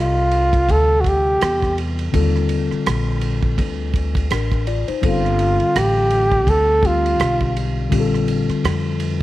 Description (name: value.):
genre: hip hop, jazz-hop.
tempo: 83 BPM.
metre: 4/4.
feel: swing 58% on 16ths.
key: G minor.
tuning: A4 = 440 Hz.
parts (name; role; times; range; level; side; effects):
breathy flugelhorn; melody; 0.0-7.6 s; F4 to A4; -18 LUFS; right 1 dB; none.
mellow tine electric piano; accompaniment; 0.0-9.2 s; C3 to D5; -23 LUFS; left 4 dB; none.
upright bass; bass; 0.0-9.2 s; G1 to F2; -20 LUFS; equal; none.
cloth-damped thuddy drum kit; drums; 0.3-9.2 s; hi-hat, kick drum, ride cymbal, rim click; -24 LUFS; right 2 dB; none.
room: light reverb, small room reverb.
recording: 1960s-style stereo, vinyl crackle.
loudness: -16 LUFS.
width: side -16 dB against mid.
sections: 0.0-9.2 A section.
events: none.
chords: 0.0 F69; 2.1 Ebmaj13; 5.0 G9sus4; 7.9 Bb69.